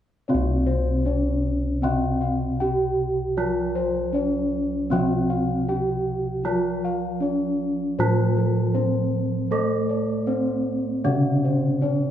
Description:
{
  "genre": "Javanese gamelan",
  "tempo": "78 BPM",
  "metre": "4/4",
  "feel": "straight",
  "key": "C pelog barang",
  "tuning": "A4 = 440 Hz",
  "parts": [
    { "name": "gamelan-type bronze metallophone", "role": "melody", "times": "0.3-12.1 s", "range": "A3+20c to G4-40c", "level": "-26 LUFS", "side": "equal", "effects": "none" },
    { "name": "gamelan-type bronze metallophone", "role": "accompaniment", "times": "0.3-12.1 s", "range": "C3 to A3+20c", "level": "-27 LUFS", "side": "right 1 dB", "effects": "none" },
    { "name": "gamelan-type bossed gongs", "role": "arpeggios", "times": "0.3-12.1 s", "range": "A4+20c to G5-40c", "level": "-30 LUFS", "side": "left 5 dB", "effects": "none" },
    { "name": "gamelan-type bossed gongs", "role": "bass", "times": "0.3-12.1 s", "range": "C2 to A4+20c", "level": "-26 LUFS", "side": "equal", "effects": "none" }
  ],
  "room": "moderate scoring stage reverb, RT60 1.6 s",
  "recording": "none",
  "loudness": "-21 LUFS",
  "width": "side -10 dB against mid",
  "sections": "0.3-12.1 A section",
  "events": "none",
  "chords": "none",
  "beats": "| 0.30 1.06 1.83 2.60 | 3.37 4.14 4.91 5.68 | 6.45 7.22 7.99 8.76 | 9.53 10.30 11.06 11.83"
}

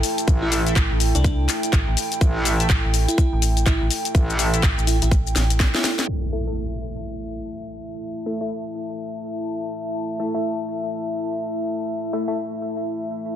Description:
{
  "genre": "bass house",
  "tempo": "124 BPM",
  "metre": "4/4",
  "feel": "swing 61% on 16ths",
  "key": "unclear",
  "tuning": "A4 = 444 Hz",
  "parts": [
    { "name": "dark analog pad", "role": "sustained chords", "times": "0.0-13.4 s", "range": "A3 to G5", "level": "-29 LUFS", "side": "right 1 dB", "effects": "chorus, sidechain pumping" },
    { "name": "garage drum kit", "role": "drums", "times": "0.0-6.1 s", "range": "handclaps, hi-hat, shaker, snare drum", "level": "-24 LUFS", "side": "left 3 dB", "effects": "low-pass filter on hats, low-pass filter on snare, low-pass filter on perc" },
    { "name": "deep dark ambient pad", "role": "texture", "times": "0.0-13.4 s", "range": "E4 to A5", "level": "-31 LUFS", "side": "left 2 dB", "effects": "chorus, built-in reverb, sidechain pumping" },
    { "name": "metallic wobble bass", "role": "bass", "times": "0.3-4.6 s", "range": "A1", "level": "-21 LUFS", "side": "equal", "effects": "chorus, tube saturation, sidechain pumping" },
    { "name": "electronic kick drum", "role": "drums", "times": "0.3-5.7 s", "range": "none", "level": "-18 LUFS", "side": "equal", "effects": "none" },
    { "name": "bell-like FM electric piano", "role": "melody", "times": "0.4-6.1 s", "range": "D4 to E4", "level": "-30 LUFS", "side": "right 1 dB", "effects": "chorus, ping-pong delay" },
    { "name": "band-passed chord stab", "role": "stabs", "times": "0.5-12.4 s", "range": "A3 to E5", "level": "-30 LUFS", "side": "left 2 dB", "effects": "chorus, sidechain pumping, ping-pong delay" },
    { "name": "metallic FM bass", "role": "bass", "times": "0.8-5.7 s", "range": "A1 to C2", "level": "-21 LUFS", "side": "equal", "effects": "overdrive, sidechain pumping" },
    { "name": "impact", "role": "sound effects", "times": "6.1-8.0 s", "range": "none", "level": "-29 LUFS", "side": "equal", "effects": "none" }
  ],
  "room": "light reverb, digital ambience",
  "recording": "dense, heavily limited modern master, low-pass filter",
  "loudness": "-20 LUFS",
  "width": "side -10 dB against mid",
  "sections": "0.0-6.1 A section; 6.1-13.4 B section",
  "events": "drop 0.0-6.1; drum fill 5.4-6.1; impact 6.1-8.0; filter sweep on synth stab 6.1-13.4; filter sweep 6.1-13.4",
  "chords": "0.0 A5",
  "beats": "| 0.28 0.76 1.24 1.73 | 2.21 2.70 3.18 3.66 | 4.15 4.63 5.12 5.60 | 6.08 6.57 7.05 7.53 | 8.02 8.50 8.99 9.47 | 9.95 10.44 10.92 11.40 | 11.89 12.37 12.86 13.34"
}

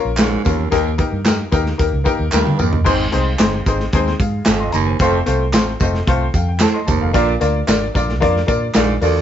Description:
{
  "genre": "uptempo 1960s-style soul",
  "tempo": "112 BPM",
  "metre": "4/4",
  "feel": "straight",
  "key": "Ab major",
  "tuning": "A4 = 440 Hz",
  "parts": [
    { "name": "clear upright piano", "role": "accompaniment", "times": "0.0-9.2 s", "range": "Ab3 to C6", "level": "-19 LUFS", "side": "left 4 dB", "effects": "none" },
    { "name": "vintage muted fingered electric bass", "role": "bass", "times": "0.1-9.2 s", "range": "F1 to Bb2", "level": "-20 LUFS", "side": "equal", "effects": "none" },
    { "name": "breathy baritone saxophone", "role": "riff", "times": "0.2-9.2 s", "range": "D2 to Bb2", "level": "-20 LUFS", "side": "right 6 dB", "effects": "none" },
    { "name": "crunchy breakbeat drum kit", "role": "drums", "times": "0.2-9.1 s", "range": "crash cymbal, hi-hat, kick drum, snare drum, toms", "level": "-19 LUFS", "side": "equal", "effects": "none" },
    { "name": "handclaps and tambourine", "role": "percussion", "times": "0.2-9.1 s", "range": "none", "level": "-27 LUFS", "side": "right 3 dB", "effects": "none" }
  ],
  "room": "light reverb",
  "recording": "band playing live in one room, nothing above 7.8 kHz",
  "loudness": "-14 LUFS",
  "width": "side -10 dB against mid",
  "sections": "0.0-2.9 A section; 2.9-9.2 B section",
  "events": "drum fill 2.3-2.9; upright piano fill 5.5-7.1",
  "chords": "0.0 Bbm; 0.7 Eb; 2.9 Ab; 5.0 F; 7.1 Bb",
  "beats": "0.19 | 0.73 1.26 1.80 2.33 | 2.87 3.40 3.94 4.47 | 5.01 5.54 6.08 6.61 | 7.15 7.68 8.22 8.75"
}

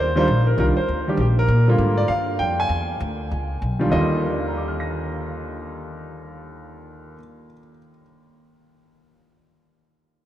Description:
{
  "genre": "jazz piano trio",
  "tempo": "198 BPM",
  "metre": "4/4",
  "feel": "swing 63% on 8ths",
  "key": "Eb major",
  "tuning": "A4 = 442 Hz",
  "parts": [
    { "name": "warm grand piano", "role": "melody", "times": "0.0-8.0 s", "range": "Eb2 to Bb6", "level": "-22 LUFS", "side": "equal", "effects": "none" },
    { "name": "upright bass", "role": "bass", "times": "0.0-7.1 s", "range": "Bb1 to Bb2", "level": "-22 LUFS", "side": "equal", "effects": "none" }
  ],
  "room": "wet cathedral reverb, RT60 5.4 s",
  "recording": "in a vast, echoing space",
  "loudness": "-19 LUFS",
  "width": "side -12 dB against mid",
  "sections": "0.0-1.5 A section; 1.5-3.9 B section; 3.9-6.3 C section",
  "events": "none",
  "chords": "0.0 Ebmaj7; 1.5 Gm7; 2.7 E7; 3.9 Ebmaj9",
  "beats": "| 0.28 0.58 0.89 1.19 | 1.49 1.79 2.10 2.40 | 2.70 3.01 3.31 3.61 | 3.92 4.22 4.53 4.83 | 5.13 5.43 5.74 6.04"
}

